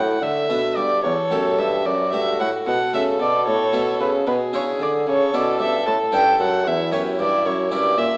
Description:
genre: classical, baroque-style sonata movement with continuo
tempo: 75 BPM (dotted quarters)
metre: 6/8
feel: straight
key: unclear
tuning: A4 = 441 Hz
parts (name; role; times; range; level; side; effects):
- warm violin; second line; 0.0-8.2 s; B4 to A5; -21 LUFS; equal; none
- harpsichord; accompaniment; 0.0-8.2 s; E2 to B4; -24 LUFS; equal; none
- warm bassoon; bass; 0.0-8.1 s; E2 to D3; -23 LUFS; equal; none
- warm violin; melody; 1.1-8.2 s; E4 to A4; -28 LUFS; left 1 dB; none
room: wet recital hall reverb, RT60 1.3 s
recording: small speaker sound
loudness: -17 LUFS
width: side -28 dB against mid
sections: 0.2-8.2 A section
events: none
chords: 0.2 D; 1.0 A7/E; 1.9 Bm11/F#; 3.5 A; 4.3 E7/B; 5.1 A; 6.7 C#m7b5/E; 7.5 F#7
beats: | 0.22 1.04 | 1.86 2.67 | 3.48 4.28 | 5.08 5.86 | 6.66 7.45

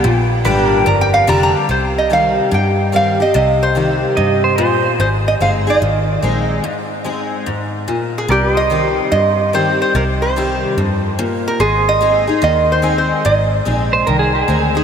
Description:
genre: honky-tonk and classic country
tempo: 146 BPM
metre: 4/4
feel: swing 66% on 8ths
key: C minor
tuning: A4 = 439 Hz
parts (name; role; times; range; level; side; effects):
- lap resonator guitar; melody; 0.0-14.8 s; G4 to Bb5; -17 LUFS; right 2 dB; analog delay
- picked steel-string acoustic guitar; accompaniment; 0.0-14.8 s; F2 to Ab4; -18 LUFS; left 2 dB; analog chorus
- pedal steel guitar; sustained chords; 0.0-1.7, 8.3-14.8 s; Bb4 to Eb5; -22 LUFS; right 2 dB; wide subtle chorus
- vintage muted picked electric bass; bass; 0.0-14.8 s; F1 to G2; -19 LUFS; equal; none
- pedal steel guitar; second line; 4.2-4.9, 13.9-14.6 s; Ab4 to Eb5; -19 LUFS; right 3 dB; lush chorus, analog delay
room: wet huge ambient reverb, RT60 6.3 s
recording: dreamy mix soaked in reverb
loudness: -13 LUFS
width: side -7 dB against mid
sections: 0.0-1.7 A section; 1.7-8.3 B section; 8.3-14.8 C section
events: resonator guitar played with a steel bar solo 0.0-1.7; break 6.6-8.3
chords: 0.0 Bb6; 1.7 Cm; 5.0 Ab; 8.3 Cm; 11.6 Ab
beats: | 0.04 0.45 0.86 1.28 | 1.69 2.10 2.52 2.93 | 3.34 3.75 4.17 4.58 | 4.99 5.41 5.82 6.23 | 6.64 7.06 7.47 7.88 | 8.30 8.71 9.12 9.53 | 9.95 10.36 10.77 11.18 | 11.60 12.01 12.42 12.83 | 13.25 13.66 14.07 14.48

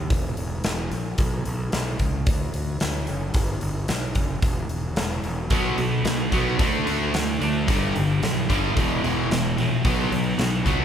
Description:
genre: hard rock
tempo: 111 BPM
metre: 4/4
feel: straight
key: unclear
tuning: A4 = 440 Hz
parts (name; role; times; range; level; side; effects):
- fuzz fingered electric bass; bass; 0.0-10.8 s; E1 to D2; -27 LUFS; equal; overdrive
- huge arena drum kit; drums; 0.1-10.8 s; hi-hat, kick drum, snare drum; -25 LUFS; equal; none
- crunchy overdriven guitar; riff; 5.5-10.8 s; E2 to D4; -27 LUFS; left 8 dB; none
- distorted electric guitar; riff; 5.5-10.8 s; E2 to D4; -27 LUFS; right 1 dB; distortion
- overdriven semi-hollow guitar; riff; 5.5-10.8 s; E2 to D4; -26 LUFS; right 5 dB; none
room: light reverb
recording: band playing live in one room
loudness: -21 LUFS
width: side -9 dB against mid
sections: 0.0-10.8 A section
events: none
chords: 0.1 N.C.; 1.2 Bsus2; 2.3 D; 3.3 G; 4.4 N.C.; 5.5 B5; 6.6 D5; 7.7 G; 8.8 E5; 9.8 B5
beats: 0.10 0.64 | 1.18 1.72 2.27 2.81 | 3.35 3.89 4.43 4.97 | 5.52 6.06 6.60 7.14 | 7.68 8.22 8.76 9.30 | 9.84 10.38

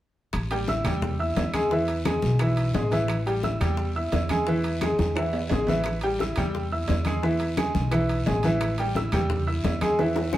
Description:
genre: latin, salsa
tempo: 174 BPM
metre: 4/4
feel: straight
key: unclear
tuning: A4 = 442 Hz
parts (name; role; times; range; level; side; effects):
- upright bass; bass; 0.3-10.4 s; A1 to E2; -28 LUFS; equal; none
- bongos; percussion; 0.3-10.4 s; none; -35 LUFS; left 5 dB; none
- claves; percussion; 0.3-10.4 s; none; -42 LUFS; right 3 dB; none
- congas; percussion; 0.3-10.4 s; none; -31 LUFS; equal; none
- guiro; percussion; 0.3-10.4 s; none; -42 LUFS; left 3 dB; none
- timbales; percussion; 0.3-10.2 s; none; -34 LUFS; right 2 dB; none
- clear baby grand piano; accompaniment; 0.5-10.4 s; E3 to E6; -26 LUFS; equal; none
room: wet studio reverb, RT60 0.7 s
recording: heard from further back in the room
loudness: -22 LUFS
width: side -14 dB against mid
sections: 0.3-10.4 A section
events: drum fill 5.0-5.9, 10.0-10.4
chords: 0.3 A5; 1.7 E; 3.1 A5; 4.5 E; 5.9 A5; 7.2 E; 8.6 A5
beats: | 0.33 0.68 1.02 1.37 | 1.71 2.06 2.40 2.75 | 3.09 3.44 3.78 4.13 | 4.47 4.82 5.16 5.51 | 5.85 6.20 6.54 6.89 | 7.23 7.58 7.92 8.27 | 8.61 8.96 9.30 9.65 | 9.99 10.34

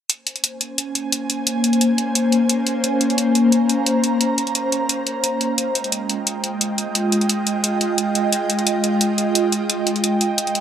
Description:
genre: liquid drum and bass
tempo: 175 BPM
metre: 4/4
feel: straight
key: Bb minor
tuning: A4 = 441 Hz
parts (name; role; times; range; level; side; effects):
- ethereal airy pad; sustained chords; 0.8-10.6 s; Ab3 to Bb5; -18 LUFS; equal; ensemble chorus, built-in reverb, phaser
- electronic hi-hat; drums; 0.1-10.6 s; none; -20 LUFS; equal; none
room: light reverb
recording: none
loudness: -17 LUFS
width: side -9 dB against mid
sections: 0.1-10.6 A section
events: none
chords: 0.1 Bbm9; 5.4 Fm9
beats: | 0.10 0.44 0.78 1.12 | 1.47 1.81 2.15 2.50 | 2.84 3.18 3.52 3.87 | 4.21 4.55 4.90 5.24 | 5.58 5.92 6.27 6.61 | 6.95 7.30 7.64 7.98 | 8.32 8.67 9.01 9.35 | 9.70 10.04 10.38

